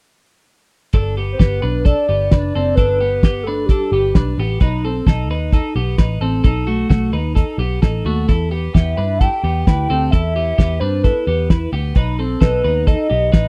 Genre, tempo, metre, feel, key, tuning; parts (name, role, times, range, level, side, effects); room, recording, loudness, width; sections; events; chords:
jangly indie pop; 131 BPM; 4/4; straight; G major; A4 = 438 Hz
twelve-string electric guitar; arpeggios; 0.9-13.5 s; A3 to B4; -25 LUFS; equal; slapback echo
vintage muted picked electric bass; bass; 0.9-13.5 s; F#1 to G2; -22 LUFS; equal
cloth-damped thuddy drum kit; drums; 0.9-13.4 s; hi-hat, kick drum, snare drum; -16 LUFS; equal
hollow clarinet-like synth lead; melody; 1.3-4.3, 8.7-13.5 s; G4 to G5; -22 LUFS; equal; chorus, slapback echo
little or no reverb; dry, close 1970s-style studio recording; -17 LUFS; mono
0.9-13.5 A section
0.9 G; 4.6 B7; 8.3 Em; 12.0 B